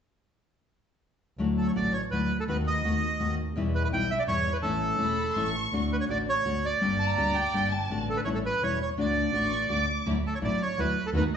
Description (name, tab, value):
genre	tango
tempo	166 BPM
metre	3/4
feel	rubato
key	D major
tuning	A4 = 438 Hz
part	nylon-string guitar	accompaniment	1.4-11.2 s	B2 to G4	-30 LUFS	left 3 dB	none
part	warm double bass	bass	1.4-11.3 s	E1 to E2	-32 LUFS	right 1 dB	none
part	bandoneon	melody	1.6-11.4 s	A4 to G5	-28 LUFS	right 2 dB	none
part	rich studio violin section	second line	5.0-10.0 s	G5 to D6	-33 LUFS	right 1 dB	none
part	rich chamber string section	stabs	10.1-11.3 s	F#3 to E4	-36 LUFS	right 4 dB	none
room	wet large studio reverb, RT60 1.4 s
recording	band playing live in one room, nothing above 8.0 kHz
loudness	-25 LUFS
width	side -8 dB against mid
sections	1.4-10.1 A section; 10.1-11.4 A section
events	none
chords	1.4 Dadd9; 2.5 B7/D#; 3.6 Em; 4.6 A; 5.7 D; 6.8 Gm; 7.9 D/A; 8.3 A7; 9.0 D; 10.1 Dadd9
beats	| 1.41 1.77 2.13 | 2.49 2.85 3.21 | 3.56 3.92 4.28 | 4.64 5.00 5.37 | 5.73 6.09 6.46 | 6.82 7.18 7.54 | 7.90 8.26 8.62 | 8.97 9.34 9.70 | 10.06 10.43 10.79 | 11.15